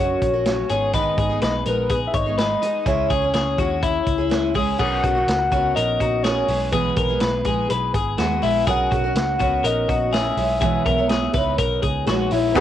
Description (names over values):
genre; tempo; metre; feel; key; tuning
jangly indie pop; 124 BPM; 4/4; straight; unclear; A4 = 440 Hz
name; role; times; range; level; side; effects
soft octave-layered synth lead; melody; 0.0-12.6 s; B4 to F#5; -23 LUFS; left 1 dB; chorus, cassette tape, analog delay
picked steel-string acoustic guitar; accompaniment; 0.0-12.6 s; G#2 to C#5; -26 LUFS; right 8 dB; none
twelve-string electric guitar; arpeggios; 0.0-12.6 s; D#4 to C#5; -23 LUFS; left 7 dB; none
vintage muted picked electric bass; bass; 0.0-12.6 s; F#1 to D#2; -27 LUFS; right 1 dB; none
vintage drum kit; drums; 0.2-12.6 s; crash cymbal, hi-hat, kick drum, snare drum; -26 LUFS; right 1 dB; cassette tape
warm studio violin section; second line; 12.6 s; B3; -24 LUFS; right 16 dB; none
bright upright piano; accompaniment; 12.6 s; D#4 to B4; -15 LUFS; left 2 dB; none
room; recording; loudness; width
light reverb; home recording on cassette; -18 LUFS; side -11 dB against mid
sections
0.0-4.8 A section; 4.8-12.6 B section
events
none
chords
0.0 F#; 0.7 G#m; 2.9 C#m; 4.8 F#/B; 6.5 E; 8.7 F#/B; 10.4 C#madd9/B